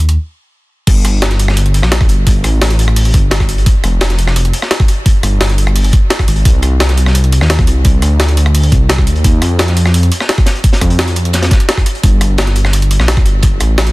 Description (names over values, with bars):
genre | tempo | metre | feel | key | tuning
liquid drum and bass | 172 BPM | 4/4 | straight | G minor | A4 = 438 Hz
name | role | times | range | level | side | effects
dark detuned saw bass | bass | 0.0-13.9 s | F1 to F2 | -11 LUFS | equal | none
jungle sampler-style drum kit | drums | 0.0-13.9 s | crash cymbal, hi-hat, rim click, snare drum | -17 LUFS | equal | none
crunchy breakbeat drum kit | drums | 0.9-13.9 s | hi-hat, snare drum | -22 LUFS | left 1 dB | high-pass filter on hats, high-pass filter on snare, high-pass filter on room
electronic kick drum | drums | 0.9-13.5 s | none | -10 LUFS | equal | none
room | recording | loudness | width
small room ambience | dense, heavily limited modern master | -9 LUFS | side -21 dB against mid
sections
0.9-13.9 A section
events
stop 0.2-0.9; drop 0.9-13.9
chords
none